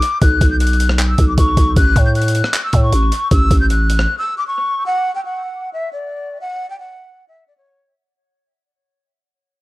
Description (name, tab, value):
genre	hip hop, trap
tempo	155 BPM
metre	4/4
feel	half-time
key	unclear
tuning	A4 = 440 Hz
part	breathy jazz flute	melody	0.0-7.9 s	C#5 to G6	-19 LUFS	left 2 dB	low-pass filter, dub echo
part	breakbeat sampler-style drum kit	drums	0.0-4.1 s	handclaps, hi-hat, kick drum, rim click	-16 LUFS	equal	none
part	growling 808-style bass	bass	0.2-4.1 s	A1 to A2	-15 LUFS	equal	none
room	little or no reverb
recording	echo-heavy mix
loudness	-13 LUFS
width	side -19 dB against mid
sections	0.0-4.9 A section; 4.9-8.0 B section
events	break 4.1-4.9; fade-out 4.9-8.0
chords	0.0 Bsus2; 1.8 A; 4.9 N.C.